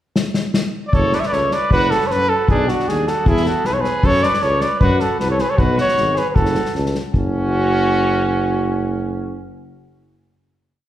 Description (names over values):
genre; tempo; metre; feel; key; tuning
balkan folk, Balkan brass band; 155 BPM; 2/4; swing 55% on 16ths; F# minor; A4 = 441 Hz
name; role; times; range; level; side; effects
unplugged drum kit; percussion; 0.2-7.3 s; kick drum, snare drum; -20 LUFS; left 1 dB; none
warm cornet; melody; 0.9-9.4 s; F#4 to E5; -19 LUFS; equal; none
clear trumpet; second line; 0.9-9.4 s; C#4 to C#5; -26 LUFS; right 1 dB; none
warm tuba; bass; 0.9-9.4 s; F#1 to F#2; -21 LUFS; right 1 dB; none
room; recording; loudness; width
wet recital hall reverb, RT60 1.6 s; heard from further back in the room; -15 LUFS; side -12 dB against mid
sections
0.2-0.9 pickup bar; 0.9-7.1 A section; 7.1-8.7 final chord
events
drum fill 0.2-0.9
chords
0.2 N.C.; 0.9 F#5; 2.5 B7#9; 3.3 E5; 4.0 F#5; 5.6 B5; 6.4 F#m; 7.1 F#5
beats
| 0.16 0.54 | 0.93 1.32 | 1.71 2.09 | 2.48 2.87 | 3.26 3.64 | 4.03 4.42 | 4.81 5.20 | 5.59 5.97 | 6.36 6.75 | 7.14 7.53 | 7.91 8.30